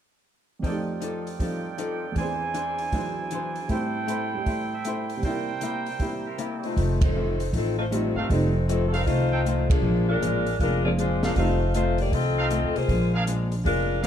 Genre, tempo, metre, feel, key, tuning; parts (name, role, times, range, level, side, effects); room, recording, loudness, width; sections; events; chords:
jazz, big band swing; 157 BPM; 4/4; swing 64% on 8ths; F major, F mixolydian from 6.8 s; A4 = 438 Hz
archtop guitar, miked and amplified; accompaniment; 0.6-14.1 s; F2 to D5; -33 LUFS; left 5 dB
warm baby grand piano; accompaniment; 0.6-11.6, 14.0-14.1 s; E2 to D5; -31 LUFS; right 3 dB
warm trumpet section; stabs; 0.6-14.1 s; D4 to E6; -32 LUFS; right 4 dB
open jazz drum kit; drums; 0.6-14.1 s; hi-hat, kick drum, ride cymbal, snare drum; -28 LUFS; right 1 dB
dark saxophone section; melody; 6.6-14.1 s; Eb3 to Eb5; -26 LUFS; left 4 dB
upright bass; bass; 6.8-14.1 s; F1 to Eb2; -25 LUFS; right 1 dB
moderate recital hall reverb, RT60 1.4 s; dark, warm production; -23 LUFS; side -9 dB against mid
0.6-6.8 A section; 6.8-14.1 B section
band accent 7.0, 9.6
0.6 F13; 2.2 E7b13; 3.7 Am7; 5.2 C7; 6.8 F7; 9.8 Bb7; 11.4 F7; 12.9 Bb7